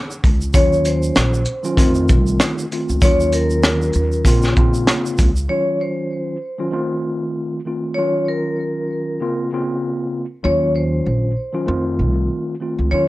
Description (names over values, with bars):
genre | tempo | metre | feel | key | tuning
hip hop, boom-bap hip-hop | 97 BPM | 4/4 | swing 57% on 16ths | unclear | A4 = 440 Hz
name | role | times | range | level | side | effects
tube shaker | percussion | 0.1-5.5 s | none | -35 LUFS | right 4 dB | none
upright bass | bass | 0.2-5.5, 10.4-13.1 s | Bb1 to F2 | -19 LUFS | equal | none
crunchy breakbeat drum kit | drums | 0.2-5.4 s | hi-hat, kick drum, rim click, shaker, snare drum | -16 LUFS | equal | none
vibraphone with medium hard mallets | melody | 0.5-13.1 s | Bb4 to Db5 | -21 LUFS | equal | high-pass filter, low-pass filter, digital delay
mellow tine electric piano | accompaniment | 0.5-13.1 s | Db3 to F4 | -21 LUFS | equal | medium stereo tremolo, cassette tape, high-pass filter, low-pass filter
room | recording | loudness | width
light reverb | worn, warbling old tape, cassette tape, warbly pitch drift | -16 LUFS | side -18 dB against mid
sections
0.0-5.5 A section; 5.5-13.1 B section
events
break 0.0-0.5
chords
0.0 N.C.; 0.5 Ebm9; 1.8 F7; 3.0 Ebm9; 4.3 Bbmadd9; 5.5 Ebm9; 6.7 F7; 8.0 Ebm9; 9.2 Bbmadd9; 10.4 Ebm9; 11.7 F7